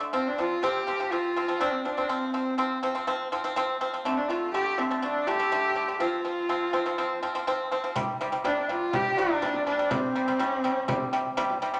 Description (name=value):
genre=mongolian traditional, Mongolian folk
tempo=123 BPM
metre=4/4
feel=straight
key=unclear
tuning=A4 = 438 Hz
part: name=pipa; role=arpeggios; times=0.0-11.8 s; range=C3 to C4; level=-30 LUFS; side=equal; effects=none
part: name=clear horsehead fiddle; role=melody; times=0.1-11.4 s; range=C4 to G4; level=-30 LUFS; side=equal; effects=none
part: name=frame drum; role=percussion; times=8.0-11.6 s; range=none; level=-39 LUFS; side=equal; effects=none
part: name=hollow low xiao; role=second line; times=8.5-11.4 s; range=C5 to G5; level=-37 LUFS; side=equal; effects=none
room=wet large studio reverb, RT60 1.1 s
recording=none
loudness=-28 LUFS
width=mono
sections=0.0-8.0 A section; 8.0-11.8 B section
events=none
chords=0.1 F5; 4.0 D5; 6.0 F5; 8.0 C5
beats=| 0.12 0.61 1.10 1.60 | 2.09 2.58 3.07 3.56 | 4.05 4.54 5.03 5.52 | 6.01 6.50 6.99 7.47 | 7.96 8.45 8.94 9.42 | 9.91 10.40 10.88 11.37